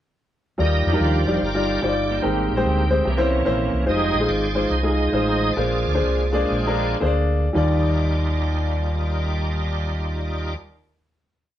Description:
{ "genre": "uptempo gospel", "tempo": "108-147 BPM", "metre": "4/4", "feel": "swing 65% on 8ths", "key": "Eb major", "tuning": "A4 = 439 Hz", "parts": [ { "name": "warm baby grand piano", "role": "accompaniment", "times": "0.6-10.6 s", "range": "Eb2 to D5", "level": "-22 LUFS", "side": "left 1 dB", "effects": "none" }, { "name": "bright tonewheel organ", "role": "sustained chords", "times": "0.6-10.5 s", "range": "E3 to Eb5", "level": "-26 LUFS", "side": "right 2 dB", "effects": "slow rotary speaker, overdrive, chorus vibrato" }, { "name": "mellow French horn section", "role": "sustained chords", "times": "0.6-10.6 s", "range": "Eb3 to D5", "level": "-36 LUFS", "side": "equal", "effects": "none" }, { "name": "fingered electric bass", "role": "bass", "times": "0.6-10.5 s", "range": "F1 to F2", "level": "-23 LUFS", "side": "equal", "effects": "none" } ], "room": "light reverb", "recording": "band playing live in one room", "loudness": "-19 LUFS", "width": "side -12 dB against mid", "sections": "0.6-7.6 breakdown; 7.6-11.6 final chord", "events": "tonewheel organ solo 0.6-7.6; slowing down 3.9-7.6", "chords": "0.6 Ebmaj9; 2.2 Abmaj9; 3.1 C7b9; 3.9 Fm7; 5.6 Bb9; 7.6 Ebmaj9", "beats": "| 0.60 1.02 1.43 1.84 | 2.25 2.65 3.06 3.47 | 3.88 4.29 4.71 5.14 | 5.58 6.04 6.51 7.02 | 7.55 8.10 8.66 9.21 | 9.77 10.32" }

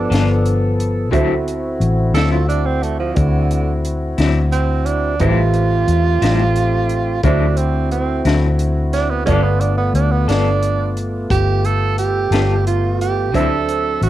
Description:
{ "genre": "slow blues", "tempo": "59 BPM (dotted quarters)", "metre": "12/8", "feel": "straight", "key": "D mixolydian", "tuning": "A4 = 438 Hz", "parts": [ { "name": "warm tenor saxophone", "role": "second line", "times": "0.0-14.1 s", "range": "D3 to A4", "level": "-20 LUFS", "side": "right 6 dB", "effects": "cassette tape" }, { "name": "dark upright piano", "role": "accompaniment", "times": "0.0-14.1 s", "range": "D4 to E5", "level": "-25 LUFS", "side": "right 6 dB", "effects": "cassette tape" }, { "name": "tonewheel organ", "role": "sustained chords", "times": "0.0-14.1 s", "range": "F3 to E5", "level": "-24 LUFS", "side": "left 1 dB", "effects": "slow rotary speaker, cassette tape" }, { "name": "vintage muted fingered electric bass", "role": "bass", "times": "0.0-14.1 s", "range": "G1 to E2", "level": "-17 LUFS", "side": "left 1 dB", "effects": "none" }, { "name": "electric guitar through a small old amp", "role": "accompaniment", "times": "0.1-13.5 s", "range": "A2 to A4", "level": "-24 LUFS", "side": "left 8 dB", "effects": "tremolo, cassette tape" }, { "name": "compact cocktail drum kit", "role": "drums", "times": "0.1-14.1 s", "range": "hi-hat, kick drum, snare drum", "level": "-23 LUFS", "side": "left 1 dB", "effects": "cassette tape" } ], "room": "light reverb, studio ambience", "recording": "home recording on cassette", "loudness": "-14 LUFS", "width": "side -13 dB against mid", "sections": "0.0-14.1 A section", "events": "tenor saxophone solo 0.0-14.1", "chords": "0.0 G9; 1.1 D9; 5.2 Am7; 7.2 D9; 9.3 G9; 13.3 D9", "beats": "0.11 | 1.13 2.15 3.17 4.18 | 5.20 6.22 7.24 8.26 | 9.27 10.29 11.31 12.33 | 13.34" }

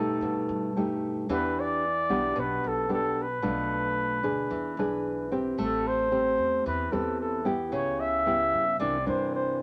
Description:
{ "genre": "bossa nova", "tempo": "112 BPM", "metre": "4/4", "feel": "straight", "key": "unclear", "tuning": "A4 = 440 Hz", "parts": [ { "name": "warm flugelhorn", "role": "melody", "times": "0.0-9.6 s", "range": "A4 to E5", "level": "-30 LUFS", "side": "equal", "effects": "none" }, { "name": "nylon-string guitar", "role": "accompaniment", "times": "0.0-9.6 s", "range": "B2 to B4", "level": "-32 LUFS", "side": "equal", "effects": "none" }, { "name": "upright bass", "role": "bass", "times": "0.0-9.6 s", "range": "A1 to G2", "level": "-42 LUFS", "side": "equal", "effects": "none" } ], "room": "moderate small room reverb, RT60 0.5 s", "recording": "none", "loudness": "-28 LUFS", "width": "mono", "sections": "0.0-9.6 A section", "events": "none", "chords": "0.0 Baug7; 1.3 Em7; 3.4 Bm7b5; 4.5 E7; 5.6 Am9; 7.7 C#m7b5; 8.8 C9", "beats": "0.23 0.76 | 1.30 1.83 2.37 2.91 | 3.44 3.98 4.51 5.05 | 5.59 6.12 6.66 7.20 | 7.74 8.27 8.81 9.35" }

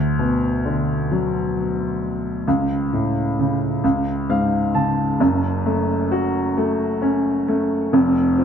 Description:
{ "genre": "pop", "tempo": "44 BPM (dotted quarters)", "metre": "6/8", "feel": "straight", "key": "F# minor", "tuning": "A4 = 440 Hz", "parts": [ { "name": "warm baby grand piano", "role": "solo", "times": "0.0-8.4 s", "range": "E#1 to A5", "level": "-18 LUFS", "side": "equal", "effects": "analog delay" } ], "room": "wet spring reverb, RT60 1.1 s", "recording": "echo-heavy mix", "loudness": "-18 LUFS", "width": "side -8 dB against mid", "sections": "0.0-5.2 A section; 5.2-8.4 B section", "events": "grand piano fill 3.8-5.2", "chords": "0.0 Bm/D; 2.5 A/C#; 3.8 C#5; 5.2 F#m; 7.9 N.C.", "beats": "1.11 | 2.47 3.84 | 5.21 6.57 | 7.93" }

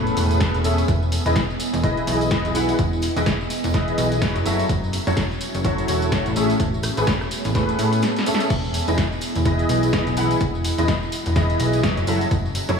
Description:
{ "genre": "piano house", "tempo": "126 BPM", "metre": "4/4", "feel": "swing 58% on 16ths", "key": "E major", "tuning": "A4 = 441 Hz", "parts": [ { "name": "warm upright piano", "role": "riff", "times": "0.0-12.8 s", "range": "A2 to F#5", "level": "-22 LUFS", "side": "equal", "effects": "ensemble chorus, sidechain pumping, tape echo" }, { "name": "plucky analog bass", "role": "bass", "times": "0.0-12.8 s", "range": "E1 to A2", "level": "-24 LUFS", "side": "equal", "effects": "sidechain pumping" }, { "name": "warbly tape-like pad", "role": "texture", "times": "0.0-12.8 s", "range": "A3 to A5", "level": "-30 LUFS", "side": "right 1 dB", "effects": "chorus, built-in reverb, phaser, sidechain pumping" }, { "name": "punchy analog drum machine", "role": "drums", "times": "0.1-12.8 s", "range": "crash cymbal, hi-hat, rim click, snare drum, tambourine", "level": "-28 LUFS", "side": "left 1 dB", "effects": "none" }, { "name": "tambourine", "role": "percussion", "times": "0.2-12.8 s", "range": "none", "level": "-38 LUFS", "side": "equal", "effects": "none" }, { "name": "electronic kick drum", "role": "drums", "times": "0.4-12.4 s", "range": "none", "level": "-24 LUFS", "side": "equal", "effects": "none" } ], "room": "moderate lush hall reverb, RT60 1.8 s", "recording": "dreamy mix soaked in reverb, studio ambience", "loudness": "-18 LUFS", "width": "side -6 dB against mid", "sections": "0.0-12.8 A section", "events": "drum fill 8.0-8.5", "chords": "0.0 Amaj9; 0.9 Emaj7; 4.5 F#m7; 6.4 Amaj9; 8.5 Emaj7; 12.1 F#m7", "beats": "0.41 | 0.88 1.36 1.84 2.31 | 2.79 3.26 3.74 4.22 | 4.69 5.17 5.64 6.12 | 6.60 7.07 7.55 8.03 | 8.50 8.98 9.46 9.93 | 10.41 10.88 11.36 11.84 | 12.31 12.79" }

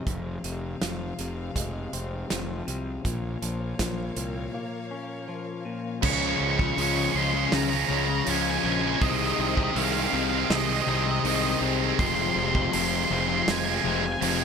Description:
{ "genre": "post-rock", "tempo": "80 BPM", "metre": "4/4", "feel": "straight", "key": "Db major", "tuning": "A4 = 440 Hz", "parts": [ { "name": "clear studio string section", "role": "sustained chords", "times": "0.0-14.4 s", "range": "C3 to F5", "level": "-39 LUFS", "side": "left 1 dB", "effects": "none" }, { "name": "clean electric guitar", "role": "arpeggios", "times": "0.0-14.4 s", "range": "F2 to Db4", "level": "-33 LUFS", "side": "left 4 dB", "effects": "slapback echo" }, { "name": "fuzz fingered electric bass", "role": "bass", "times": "0.1-14.4 s", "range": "F1 to Db2", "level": "-32 LUFS", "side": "right 1 dB", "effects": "overdrive" }, { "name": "loose indie drum kit", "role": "drums", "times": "0.1-14.4 s", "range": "crash cymbal, hi-hat, kick drum, snare drum", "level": "-31 LUFS", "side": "right 2 dB", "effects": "none" }, { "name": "sludgy distorted guitar", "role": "riff", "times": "6.0-14.4 s", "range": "F2 to Db4", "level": "-29 LUFS", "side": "left 13 dB", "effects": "overdrive" }, { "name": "tight distorted guitar", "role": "riff", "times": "6.0-14.4 s", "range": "F2 to Db4", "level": "-28 LUFS", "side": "right 16 dB", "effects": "distortion" }, { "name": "octave-fuzz lead guitar", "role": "melody", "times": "6.1-14.4 s", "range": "Eb5 to Db6", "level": "-29 LUFS", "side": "right 1 dB", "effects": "distortion, slapback echo" } ], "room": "light reverb, small room ambience", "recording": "none", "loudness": "-24 LUFS", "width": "side -6 dB against mid", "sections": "0.0-6.0 A section; 6.0-14.4 B section", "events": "break 4.5-6.0", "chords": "0.1 Fm; 3.0 Bbm; 6.0 Db; 9.0 Ab/C; 12.0 Fm", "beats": "| 0.07 0.81 1.56 2.30 | 3.05 3.80 4.54 5.29 | 6.03 6.78 7.53 8.27 | 9.02 9.76 10.50 11.25 | 11.99 12.74 13.48 14.23" }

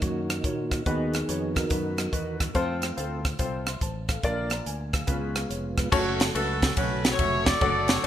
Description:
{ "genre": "uptempo gospel", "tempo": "142 BPM", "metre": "4/4", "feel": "swing 66% on 8ths", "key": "unclear", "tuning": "A4 = 439 Hz", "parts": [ { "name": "warm grand piano", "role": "accompaniment", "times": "0.0-8.1 s", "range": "Bb2 to C6", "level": "-31 LUFS", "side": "left 3 dB", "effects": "analog chorus" }, { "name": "percussive tonewheel organ", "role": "sustained chords", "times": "0.0-8.1 s", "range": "C#3 to Bb4", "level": "-32 LUFS", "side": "right 2 dB", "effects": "slow rotary speaker, chorus vibrato" }, { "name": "fingered electric bass", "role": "bass", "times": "0.0-8.1 s", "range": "F1 to Bb2", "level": "-33 LUFS", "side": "equal", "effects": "none" }, { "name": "crisp fusion drum kit", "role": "drums", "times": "0.0-8.1 s", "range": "crash cymbal, hi-hat, kick drum, ride cymbal, rim click, snare drum", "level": "-27 LUFS", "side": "right 1 dB", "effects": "none" }, { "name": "warm horn section", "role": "melody", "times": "6.3-8.1 s", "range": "C#4 to D5", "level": "-26 LUFS", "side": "left 1 dB", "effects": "ping-pong delay" } ], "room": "moderate plate reverb, RT60 1.7 s, studio reverb", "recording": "bright 1980s-style digital production", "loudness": "-24 LUFS", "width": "side -11 dB against mid", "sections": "0.0-5.9 A section; 5.9-8.1 B section", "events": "tonewheel organ solo 0.0-5.9", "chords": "0.0 Ebm7; 0.9 B/D#; 2.5 F; 4.2 Bb; 5.1 Db7; 5.9 F#m", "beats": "0.02 0.44 | 0.86 1.28 1.70 2.13 | 2.55 2.97 3.39 3.81 | 4.24 4.66 5.08 5.50 | 5.93 6.35 6.77 7.19 | 7.61 8.03" }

